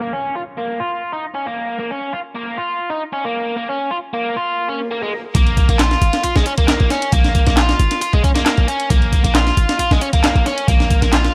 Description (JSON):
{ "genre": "breakbeat, breaks", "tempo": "135 BPM", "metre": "4/4", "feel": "swing 54% on 16ths", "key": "Bb minor", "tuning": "A4 = 440 Hz", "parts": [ { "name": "biting overdriven guitar", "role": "riff", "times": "0.0-11.3 s", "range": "Ab3 to F4", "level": "-22 LUFS", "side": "equal", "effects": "vintage 12-bit sampler grit, low-pass filter, analog delay" }, { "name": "downlifter and swell", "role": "sound effects", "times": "0.0-1.8, 4.6-5.3 s", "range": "none", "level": "-33 LUFS", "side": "equal", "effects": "none" }, { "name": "warm 808-style bass", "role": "bass", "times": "5.3-11.3 s", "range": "Ab1 to Bb1", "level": "-18 LUFS", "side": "equal", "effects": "tube saturation" }, { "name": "breakbeat sampler-style drum kit", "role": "drums", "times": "5.3-11.3 s", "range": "hi-hat, kick drum, snare drum", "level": "-19 LUFS", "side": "equal", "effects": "studio reverb" }, { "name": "house drum kit", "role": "drums", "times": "5.3-11.3 s", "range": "handclaps, hi-hat", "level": "-26 LUFS", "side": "equal", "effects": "low-pass filter on hats, studio reverb, low-pass filter on snare" } ], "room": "little or no reverb", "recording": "dry, gritty hardware recording", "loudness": "-17 LUFS", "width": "mono", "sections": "0.0-5.3 A section; 5.3-11.3 B section", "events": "swell 4.6-5.3; drop 5.3-11.3", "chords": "0.0 Bbm" }